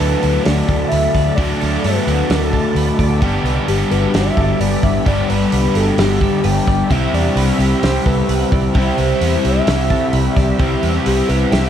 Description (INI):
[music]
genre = rock, shoegaze and dream pop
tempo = 130 BPM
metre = 4/4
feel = straight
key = unclear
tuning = A4 = 440 Hz
[part]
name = soft octave-layered synth lead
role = melody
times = 0.0-11.7 s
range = G4 to G5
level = -22 LUFS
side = equal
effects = chorus, phaser, slapback echo
[part]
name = ensemble organ-string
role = sustained chords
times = 0.0-11.7 s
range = C4 to B5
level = -27 LUFS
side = equal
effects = ensemble chorus
[part]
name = twelve-string electric guitar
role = arpeggios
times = 0.0-11.7 s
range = F#4 to D5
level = -27 LUFS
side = right 9 dB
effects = wide subtle chorus, slapback echo
[part]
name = biting overdriven guitar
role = riff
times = 0.0-11.7 s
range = G2 to E4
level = -21 LUFS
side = right 7 dB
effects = reverse reverb
[part]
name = raw garage guitar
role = riff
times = 0.0-11.7 s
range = G2 to E4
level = -20 LUFS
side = left 9 dB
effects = overdrive, analog chorus
[part]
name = vintage muted fingered electric bass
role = bass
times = 0.0-11.7 s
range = G1 to G2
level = -19 LUFS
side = equal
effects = none
[part]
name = loose indie drum kit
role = drums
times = 0.2-11.6 s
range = hi-hat, kick drum, snare drum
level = -21 LUFS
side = equal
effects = none
[sound]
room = moderate spring reverb, RT60 1.1 s, small room ambience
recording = vinyl crackle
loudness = -13 LUFS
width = side -9 dB against mid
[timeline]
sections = 0.0-11.7 A section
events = none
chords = 0.0 D6; 3.2 Gmaj7; 6.9 Cmaj7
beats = 0.00 0.46 0.92 | 1.38 1.84 2.30 2.76 | 3.22 3.69 4.15 4.61 | 5.07 5.53 5.99 6.45 | 6.91 7.38 7.84 8.30 | 8.76 9.22 9.68 10.14 | 10.61 11.07 11.53